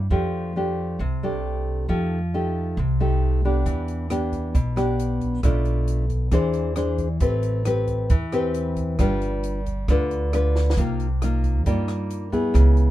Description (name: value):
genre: bossa nova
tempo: 135 BPM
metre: 4/4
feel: straight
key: unclear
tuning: A4 = 436 Hz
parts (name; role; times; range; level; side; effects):
- nylon-string guitar; accompaniment; 0.0-12.9 s; B2 to C5; -24 LUFS; left 1 dB; none
- upright bass; bass; 0.0-12.9 s; G1 to G2; -23 LUFS; equal; none
- compact cocktail drum kit; drums; 3.7-12.9 s; hi-hat, kick drum, rim click, snare drum; -25 LUFS; right 1 dB; none
room: little or no reverb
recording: minimal, uncompressed stereo recording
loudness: -20 LUFS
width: side -14 dB against mid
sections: 0.0-10.8 A section; 10.8-12.9 A section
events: drum fill 10.5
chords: 0.1 F69; 1.9 F9; 3.7 Em7; 5.4 Bm7b5; 6.3 E7b13; 7.2 Am9; 9.0 G7; 10.8 Cm7